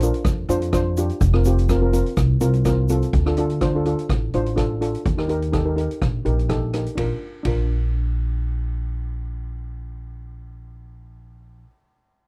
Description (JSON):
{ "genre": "calypso", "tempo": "125 BPM", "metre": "4/4", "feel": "swing 54% on 16ths", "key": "Bb major", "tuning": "A4 = 440 Hz", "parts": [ { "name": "steel pan", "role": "accompaniment", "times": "0.0-11.7 s", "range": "C4 to C5", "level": "-26 LUFS", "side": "equal", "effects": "none" }, { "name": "upright bass", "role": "bass", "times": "0.0-11.6 s", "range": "F1 to F2", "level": "-24 LUFS", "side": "equal", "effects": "none" }, { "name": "street-band drum kit", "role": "drums", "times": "0.0-7.6 s", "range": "hi-hat, kick drum, ride cymbal, rim click", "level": "-27 LUFS", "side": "equal", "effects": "none" }, { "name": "egg shaker", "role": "percussion", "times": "0.0-3.1 s", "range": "none", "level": "-42 LUFS", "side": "equal", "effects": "none" } ], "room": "little or no reverb", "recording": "dry, close 1970s-style studio recording", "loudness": "-21 LUFS", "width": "mono", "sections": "0.0-7.0 A section; 7.0-10.8 B section", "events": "none", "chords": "0.0 Bbadd9; 1.2 Fsus4; 3.1 Dm; 5.1 Eb; 7.0 Bb" }